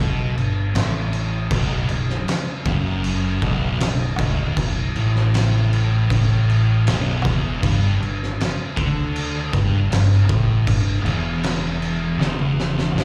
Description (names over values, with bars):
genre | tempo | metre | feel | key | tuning
stoner and doom metal | 78 BPM | 4/4 | straight | B minor | A4 = 440 Hz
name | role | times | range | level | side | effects
thick fuzz guitar | riff | 0.0-13.0 s | B1 to D3 | -26 LUFS | equal | distortion, slapback echo
growling fingered electric bass | bass | 0.0-13.0 s | B0 to D2 | -25 LUFS | equal | overdrive
oversized low-tuned drum kit | drums | 0.4-13.0 s | crash cymbal, kick drum, snare drum, toms | -25 LUFS | equal | none
thick fuzz guitar | riff | 1.5-13.0 s | B1 to D3 | -27 LUFS | equal | distortion, slapback echo
room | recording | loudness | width
little or no reverb | live gig heard through the venue's PA, club reverb | -20 LUFS | mono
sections
0.0-13.0 A section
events
drum fill 12.2-13.0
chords
0.0 G5; 1.5 Bm; 7.6 G5